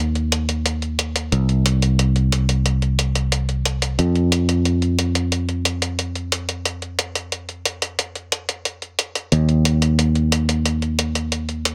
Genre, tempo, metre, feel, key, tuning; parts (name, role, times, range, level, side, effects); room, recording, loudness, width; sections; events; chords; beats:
synthwave; 90 BPM; 4/4; straight; A4 = 440 Hz
picked electric bass; bass; 0.0-11.7 s; C2 to F2; -21 LUFS; equal; tube saturation, low-pass filter
electronic hi-hat; drums; 0.2-11.7 s; -24 LUFS; equal
little or no reverb; -20 LUFS; mono
0.0-11.7 A section
0.66 | 1.32 1.99 2.65 3.32 | 3.99 4.66 5.32 5.99 | 6.66 7.32 7.99 8.65 | 9.32 9.99 10.65 11.32